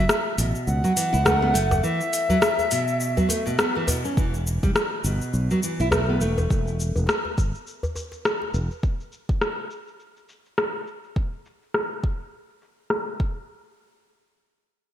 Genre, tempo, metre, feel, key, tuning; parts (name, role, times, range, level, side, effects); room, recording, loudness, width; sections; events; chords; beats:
organic downtempo; 103 BPM; 4/4; swing 57% on 16ths; E dorian; A4 = 444 Hz
reedy bass bansuri; melody; 0.0-3.6 s; E5 to F#5; -25 LUFS; left 1 dB; ping-pong delay
nylon-string guitar; arpeggios; 0.0-6.5 s; B2 to E4; -26 LUFS; right 1 dB; low-pass filter, ping-pong delay
fretless electric bass; bass; 0.0-8.7 s; E1 to C#2; -24 LUFS; equal; sidechain pumping
deep house drum kit; drums; 0.1-13.0 s; hi-hat, rim click, shaker; -25 LUFS; left 1 dB; overdrive, low-pass filter on perc, low-pass filter on hats, low-pass filter on snare, low-pass filter on room, gated reverb
djembe; percussion; 0.1-8.8 s; -30 LUFS; left 1 dB
electronic kick drum; drums; 4.2-13.3 s; -23 LUFS; equal; overdrive
moderate lush hall reverb, RT60 1.9 s, digital ambience; bright 1980s-style digital production; -22 LUFS; side -10 dB against mid
0.0-4.2 A section; 4.2-13.5 B section; 13.5-14.9 C section
filter sweep on drum 4.2-13.5
0.0 F#m7; 4.2 E5; 8.8 N.C.
0.09 0.68 1.26 | 1.84 2.42 3.00 3.59 | 4.17 4.75 5.33 5.92 | 6.50 7.08 7.67 8.25 | 8.83 9.41 9.99 10.58 | 11.16 11.74 12.32 12.91